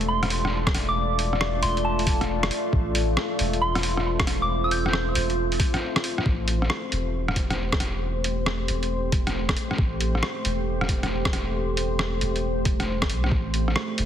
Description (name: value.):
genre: future garage.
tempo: 136 BPM.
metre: 4/4.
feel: swing 65% on 16ths.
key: A minor.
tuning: A4 = 439 Hz.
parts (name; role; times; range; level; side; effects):
deep dark ambient pad; sustained chords; 0.0-14.1 s; A3 to D5; -28 LUFS; left 1 dB; chorus, built-in reverb, sidechain pumping.
soft dub sub bass; bass; 0.0-14.1 s; E1 to B1; -27 LUFS; equal; sidechain pumping.
lo-fi sampler-style drum kit; drums; 0.0-14.1 s; hi-hat, rim click; -28 LUFS; equal; overdrive, studio reverb.
soft synth bell; melody; 0.1-5.1 s; A5 to G6; -28 LUFS; right 1 dB; chorus, tremolo, analog delay.
electronic kick drum; drums; 0.7-13.4 s; none; -25 LUFS; equal; overdrive, studio reverb.
room: light reverb.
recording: heavily compressed radio sound, multiband compression.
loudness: -22 LUFS.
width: side -10 dB against mid.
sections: 0.0-6.3 A section; 6.3-14.1 B section.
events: none.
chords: 0.0 Dm; 6.3 Am7; 13.3 Dm.